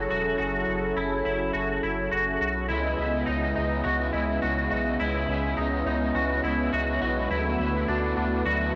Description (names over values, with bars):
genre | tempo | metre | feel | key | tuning
dream pop | 104 BPM | 4/4 | straight | unclear | A4 = 440 Hz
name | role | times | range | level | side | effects
lush unison pad | sustained chords | 0.0-8.8 s | C#3 to D#5 | -30 LUFS | equal | chorus
twangy electric guitar | arpeggios | 0.0-8.7 s | D4 to F#4 | -31 LUFS | equal | ensemble chorus, analog delay
saturated sub bass | bass | 0.0-8.7 s | E1 to D2 | -34 LUFS | equal | none
crunchy overdriven guitar | accompaniment | 2.7-8.8 s | C#3 to D#5 | -34 LUFS | equal | harmonic tremolo, subtle chorus
room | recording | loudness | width
wet small room reverb, RT60 0.5 s | home recording on cassette | -26 LUFS | mono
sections
0.0-8.8 A section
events
none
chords
0.0 F#m7; 2.7 C#m9; 7.3 D6